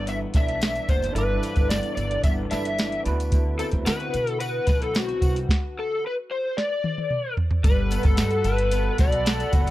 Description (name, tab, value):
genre	indie pop, bedroom pop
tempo	111 BPM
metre	4/4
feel	straight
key	G major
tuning	A4 = 439 Hz
part	overdriven slide guitar	melody	0.0-9.5 s	F#4 to E5	-27 LUFS	left 1 dB	ensemble chorus, tape echo
part	barky tine electric piano	accompaniment	0.0-5.5 s	B3 to D5	-33 LUFS	right 4 dB	medium tremolo
part	electric guitar through a small old amp	accompaniment	0.0-9.7 s	G2 to B4	-33 LUFS	left 5 dB	analog chorus, vibrato effect
part	upright bass	bass	0.0-9.7 s	F#1 to D3	-28 LUFS	equal	transformer saturation
part	soft vintage rhythm box	drums	0.1-9.7 s	hi-hat, kick drum, snare drum, toms	-22 LUFS	equal	none
part	tambourine	percussion	0.1-9.7 s	none	-45 LUFS	right 2 dB	none
part	warm analog pad	sustained chords	7.7-9.7 s	A4 to B5	-33 LUFS	right 2 dB	chorus
room	little or no reverb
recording	dry, gritty hardware recording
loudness	-21 LUFS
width	side -16 dB against mid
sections	0.0-7.6 A section; 7.6-9.7 B section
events	drum fill 6.6-7.6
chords	0.0 G6; 3.0 D13; 7.6 Gmaj9